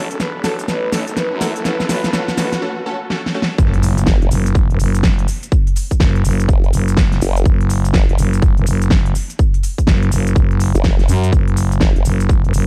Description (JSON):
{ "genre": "bass house", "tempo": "124 BPM", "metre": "4/4", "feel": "swing 62% on 16ths", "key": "F# phrygian", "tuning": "A4 = 440 Hz", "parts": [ { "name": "breathy flute-like synth lead", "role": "melody", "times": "0.0-2.6 s", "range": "A4 to B4", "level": "-26 LUFS", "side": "equal", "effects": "tremolo, subtle chorus, digital delay" }, { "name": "orchestra-hit-like synth stab", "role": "stabs", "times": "0.0-3.5 s", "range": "A3 to A4", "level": "-28 LUFS", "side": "equal", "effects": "built-in reverb, sidechain pumping, digital delay" }, { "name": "growling FM bass", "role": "bass", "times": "0.0-12.7 s", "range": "E1 to F#2", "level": "-19 LUFS", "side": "equal", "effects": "overdrive, sidechain pumping, high-pass filter" }, { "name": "riser and impact", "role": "sound effects", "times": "0.1-5.5 s", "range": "none", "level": "-30 LUFS", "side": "equal", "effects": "none" }, { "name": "ethereal airy pad", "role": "texture", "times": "0.2-2.6 s", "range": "F#4 to A5", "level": "-41 LUFS", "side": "equal", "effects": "none" }, { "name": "big-room dance drum kit", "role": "drums", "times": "0.1-12.7 s", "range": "hi-hat, shaker, snare drum", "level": "-24 LUFS", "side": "equal", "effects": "none" }, { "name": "electronic kick drum", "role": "drums", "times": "3.6-12.4 s", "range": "none", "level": "-17 LUFS", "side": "equal", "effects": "none" }, { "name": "formant-sweep wobble bass", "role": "bass", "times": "4.1-12.0 s", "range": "F#1 to G1", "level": "-19 LUFS", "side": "equal", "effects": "chorus, sidechain pumping" } ], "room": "light reverb", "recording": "dark, warm production", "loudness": "-16 LUFS", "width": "mono", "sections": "0.0-3.6 A section; 3.6-12.7 B section", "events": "build-up 0.0-3.6; drum fill 0.0-2.6, 3.1-3.6; riser 0.1-2.6; break 2.6-3.6; drop 3.6-12.7; impact 3.6-5.5", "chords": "0.0 F#m; 3.6 N.C." }